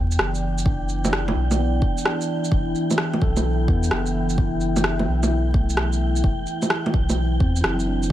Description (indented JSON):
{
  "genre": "future garage",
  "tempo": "129 BPM",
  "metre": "4/4",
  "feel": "swing 66% on 16ths",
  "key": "E minor",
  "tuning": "A4 = 439 Hz",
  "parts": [
    { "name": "bright tine electric piano", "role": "accompaniment", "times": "0.0-8.1 s", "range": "F#3 to A4", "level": "-30 LUFS", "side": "left 2 dB", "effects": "vintage 12-bit sampler grit, sidechain pumping, tape echo" },
    { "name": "deep dark ambient pad", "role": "sustained chords", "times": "0.0-8.1 s", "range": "E3 to E5", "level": "-27 LUFS", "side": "equal", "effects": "chorus, built-in reverb, sidechain pumping" },
    { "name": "warm sub bass", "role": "bass", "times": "0.0-8.1 s", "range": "E1 to E2", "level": "-23 LUFS", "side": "equal", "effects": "sidechain pumping" },
    { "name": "wind-like tuned noise texture", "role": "texture", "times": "0.0-8.1 s", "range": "G5", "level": "-33 LUFS", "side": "right 1 dB", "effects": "built-in reverb" },
    { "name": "electronic shaker, rim click and bongos", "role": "drums", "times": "0.1-8.1 s", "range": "none", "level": "-24 LUFS", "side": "right 1 dB", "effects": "none" },
    { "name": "electronic kick drum", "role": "drums", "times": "0.7-8.1 s", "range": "none", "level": "-21 LUFS", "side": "equal", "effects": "none" }
  ],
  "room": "light reverb",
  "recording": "vinyl crackle",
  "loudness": "-19 LUFS",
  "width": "side -13 dB against mid",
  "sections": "0.0-8.1 A section",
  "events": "none",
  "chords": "0.0 Em7; 6.2 C/E"
}